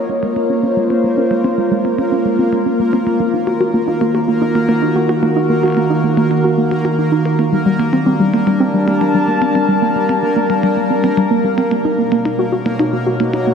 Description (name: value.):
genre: IDM.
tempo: 111 BPM.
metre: 4/4.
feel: straight.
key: unclear.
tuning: A4 = 439 Hz.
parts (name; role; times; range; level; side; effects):
warbly tape-like pad; sustained chords; 0.0-13.5 s; B2 to A5; -16 LUFS; equal; chorus, built-in reverb.
warbly dusty pluck; arpeggios; 0.0-13.5 s; G3 to Bb4; -16 LUFS; right 1 dB; chorus, tape echo.
bubbling stepped-filter texture; texture; 0.0-13.5 s; Bb3 to Bb4; -24 LUFS; left 1 dB; chorus, built-in reverb.
electronic hi-hat; drums; 0.2-13.4 s; none; -38 LUFS; left 1 dB; low-pass filter on hats, low-pass filter on perc, low-pass filter on snare, low-pass filter on room.
room: wet cathedral reverb, RT60 5.9 s.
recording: dreamy mix soaked in reverb.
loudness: -13 LUFS.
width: side -6 dB against mid.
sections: 0.0-13.5 A section.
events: none.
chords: 0.0 Bbm9; 3.1 Ebm7; 7.4 Gm11; 11.7 Bmaj7.